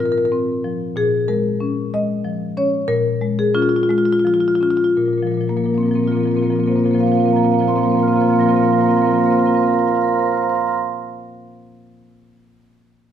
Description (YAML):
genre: classical, contemporary piece for solo marimba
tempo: 80-96 BPM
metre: 3/4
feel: rubato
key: Bb minor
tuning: A4 = 440 Hz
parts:
  - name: marimba with medium hard mallets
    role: solo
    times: 0.0-10.8 s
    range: Bb2 to Bb6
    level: -15 LUFS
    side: equal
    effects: none
room: wet recital hall reverb, RT60 1.5 s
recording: minimal, uncompressed stereo recording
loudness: -15 LUFS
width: side -9 dB against mid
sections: 1.0-5.0 A section; 5.0-9.3 B section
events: slowing down 0.0-5.0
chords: 0.0 Bbsus2; 1.0 Bbm7; 5.0 Bbsus2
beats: 0.33 | 0.97 1.61 2.25 | 2.89 3.54 4.24 | 4.97 5.70 6.43 | 7.16 7.88 8.62